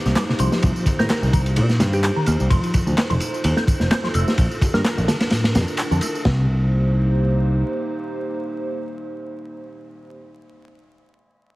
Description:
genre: breakbeat, breaks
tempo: 128 BPM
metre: 4/4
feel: swing 54% on 16ths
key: C dorian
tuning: A4 = 441 Hz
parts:
  - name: dark analog pad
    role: sustained chords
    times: 0.0-10.2 s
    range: Bb3 to C5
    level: -28 LUFS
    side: right 1 dB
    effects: chorus, vintage 12-bit sampler grit, sidechain pumping
  - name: picked electric bass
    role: bass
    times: 0.1-7.6 s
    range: F1 to Bb2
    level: -19 LUFS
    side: equal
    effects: none
  - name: crunchy breakbeat drum kit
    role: drums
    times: 0.1-6.4 s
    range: kick drum, ride cymbal, snare drum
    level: -21 LUFS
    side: equal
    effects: none
  - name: electronic tambourine and handclaps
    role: drums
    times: 0.1-6.2 s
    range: none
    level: -31 LUFS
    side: equal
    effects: none
  - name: percussive tonewheel organ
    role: riff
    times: 0.2-6.5 s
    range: A2 to C4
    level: -25 LUFS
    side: equal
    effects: chorus vibrato, fast rotary speaker, dub echo
  - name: bongos and congas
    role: percussion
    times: 0.5-6.0 s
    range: none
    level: -31 LUFS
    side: left 1 dB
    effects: none
  - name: glassy wavetable pluck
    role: melody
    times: 1.0-4.9 s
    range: G4 to Bb4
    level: -29 LUFS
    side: equal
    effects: chorus, small speaker sound, cassette tape, dub echo
room: light reverb, studio ambience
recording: heavily compressed radio sound, vinyl crackle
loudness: -17 LUFS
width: side -19 dB against mid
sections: 0.0-6.3 A section; 6.3-10.0 B section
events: drop 0.0-6.3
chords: 0.0 Cm7; 2.5 F7; 4.4 Bbmaj7; 6.3 Cm7

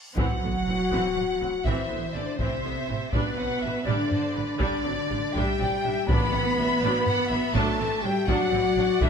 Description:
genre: cinematic, epic orchestral film score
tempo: 82 BPM (dotted quarters)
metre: 12/8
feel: straight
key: A dorian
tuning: A4 = 440 Hz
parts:
  - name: reverse cymbal and sub drop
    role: sound effects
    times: 0.0-3.1 s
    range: none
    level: -38 LUFS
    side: equal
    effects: none
  - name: warm symphonic violin section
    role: melody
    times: 0.2-9.1 s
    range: B4 to B5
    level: -33 LUFS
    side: left 1 dB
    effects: none
  - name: concert flute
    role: second line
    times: 0.2-9.1 s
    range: B4 to B5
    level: -33 LUFS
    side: left 2 dB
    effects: none
  - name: warm studio viola section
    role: accompaniment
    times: 0.2-9.1 s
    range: D3 to D4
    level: -33 LUFS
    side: right 2 dB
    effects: none
  - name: dark French horn section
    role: sustained chords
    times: 0.2-9.1 s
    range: B3 to B4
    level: -29 LUFS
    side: left 5 dB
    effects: none
  - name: warm symphonic cello section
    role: bass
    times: 0.2-9.1 s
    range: B2 to B3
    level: -31 LUFS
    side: right 3 dB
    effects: none
  - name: warm symphonic double bass section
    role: bass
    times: 0.2-9.1 s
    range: A1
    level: -33 LUFS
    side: right 4 dB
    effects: none
  - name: taiko ensemble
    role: drums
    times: 0.2-9.1 s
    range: none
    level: -29 LUFS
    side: equal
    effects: none
  - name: rich symphonic violin section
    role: second line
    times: 1.7-9.1 s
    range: B4 to F#5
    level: -34 LUFS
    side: left 1 dB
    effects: none
  - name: timpani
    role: percussion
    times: 6.1-6.8 s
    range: A2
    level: -33 LUFS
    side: left 1 dB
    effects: none
room: light reverb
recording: none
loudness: -23 LUFS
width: side -6 dB against mid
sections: 0.2-9.1 A section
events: break 0.0; drum fill 0.0; reverse cymbal 0.0; impact 0.2-3.1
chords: 0.2 Am; 3.1 Gadd9/A; 6.1 Em7/A

